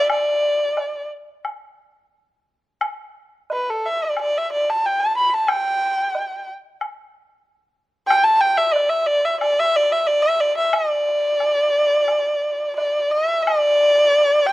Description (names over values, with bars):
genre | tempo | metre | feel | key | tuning
chinese traditional, Chinese chamber ensemble | 90 BPM | 4/4 | rubato | D zhi mode | A4 = 441 Hz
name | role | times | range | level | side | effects
rich erhu | melody | 0.0-14.5 s | A4 to B5 | -17 LUFS | equal | none
woodblock | percussion | 0.1-13.6 s | none | -25 LUFS | left 2 dB | none
room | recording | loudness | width
light reverb | close, detailed microphones | -17 LUFS | side -17 dB against mid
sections
0.0-13.5 A section; 13.5-14.5 B section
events
none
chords
none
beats
| 0.09 0.75 1.43 2.11 | 2.79 3.48 4.15 4.82 | 5.48 6.14 6.80 7.45 | 8.09 8.74 9.40 10.06 | 10.73 11.40 12.08 12.78 | 13.47 14.16